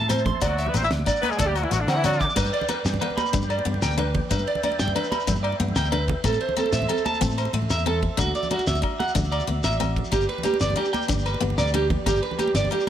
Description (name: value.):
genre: highlife guitar band.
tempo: 124 BPM (dotted quarters).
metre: 12/8.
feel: straight.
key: G major.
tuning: A4 = 440 Hz.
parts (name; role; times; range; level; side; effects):
picked steel-string acoustic guitar; accompaniment; 0.0-12.9 s; A3 to D4; -31 LUFS; left 6 dB; none.
tonewheel organ; sustained chords; 0.0-12.9 s; F#4 to D6; -36 LUFS; left 1 dB; slow rotary speaker, overdrive, chorus vibrato.
electric guitar at the edge of break-up; arpeggios; 0.0-12.8 s; F#4 to D6; -26 LUFS; right 3 dB; spring reverb, slapback echo.
fingered electric bass; bass; 0.0-12.7 s; G1 to D3; -26 LUFS; equal; none.
congas; percussion; 0.0-12.8 s; none; -32 LUFS; right 4 dB; none.
damped 70s drum kit; drums; 0.1-12.8 s; crash cymbal, hi-hat, kick drum, ride cymbal, snare drum; -30 LUFS; equal; none.
agogo bells; percussion; 0.1-12.9 s; none; -34 LUFS; left 16 dB; none.
shekere; percussion; 0.1-12.8 s; none; -32 LUFS; left 3 dB; none.
clear horn section; melody; 0.4-2.3 s; C3 to E5; -27 LUFS; left 3 dB; none.
room: moderate plate reverb, RT60 1.5 s.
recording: none.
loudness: -21 LUFS.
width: side -10 dB against mid.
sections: 0.0-2.4 A section; 2.4-12.9 B section.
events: horn section solo 0.0-2.4; drum fill 1.7-2.4, 9.5-10.1.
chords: 0.4 Dadd9; 2.4 G; 6.2 Am; 8.2 Dadd9; 10.1 G.